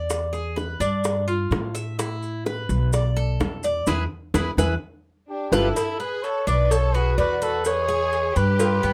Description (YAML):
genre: latin, Cuban son and guajira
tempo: 127 BPM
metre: 4/4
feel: straight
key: unclear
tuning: A4 = 441 Hz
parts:
  - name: Cuban tres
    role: arpeggios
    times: 0.0-8.9 s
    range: B3 to E5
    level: -29 LUFS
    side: equal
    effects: none
  - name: upright bass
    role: bass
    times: 0.0-8.9 s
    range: G1 to A2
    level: -27 LUFS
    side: equal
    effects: none
  - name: bongos and cowbell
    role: percussion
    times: 0.1-8.8 s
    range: none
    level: -30 LUFS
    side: equal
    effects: none
  - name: maracas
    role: percussion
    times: 0.1-8.9 s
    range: none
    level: -39 LUFS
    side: equal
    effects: none
  - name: trumpet with bucket mute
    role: melody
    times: 5.3-8.9 s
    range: G4 to D5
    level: -27 LUFS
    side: equal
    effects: plate reverb
  - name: clear studio violin section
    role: second line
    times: 5.3-8.9 s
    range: D4 to B4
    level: -34 LUFS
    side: equal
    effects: none
room: light reverb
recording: close, detailed microphones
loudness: -23 LUFS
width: mono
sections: 0.0-5.8 A section; 5.8-8.9 B section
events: band accent 3.9-5.8; drum fill 5.1-5.8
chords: 0.1 E7; 1.0 G5; 2.0 Asus2; 2.9 Bm7; 3.9 E; 4.8 G7; 5.8 Bm11; 6.7 Bm7; 7.7 E